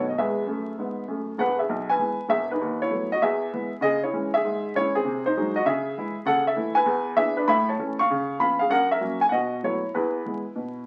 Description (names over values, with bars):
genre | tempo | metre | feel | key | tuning
jazz, stride piano | 197 BPM | 4/4 | swing 65% on 8ths | E major, A major from 6.3 s | A4 = 440 Hz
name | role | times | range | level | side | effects
warm upright piano | solo | 0.0-10.9 s | E1 to C#6 | -25 LUFS | equal | none
room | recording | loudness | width
moderate studio reverb, RT60 0.8 s | very old 78 rpm record, vinyl crackle | -25 LUFS | mono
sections
0.0-1.4 A section; 1.4-10.9 B section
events
none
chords
0.2 E; 2.6 B7/D#; 3.2 E; 3.8 C#m; 5.0 G#7/B#; 5.7 C#m; 6.3 A/C#; 6.9 E7; 7.5 A; 8.1 C#7; 8.7 F#7; 9.3 B7; 9.9 E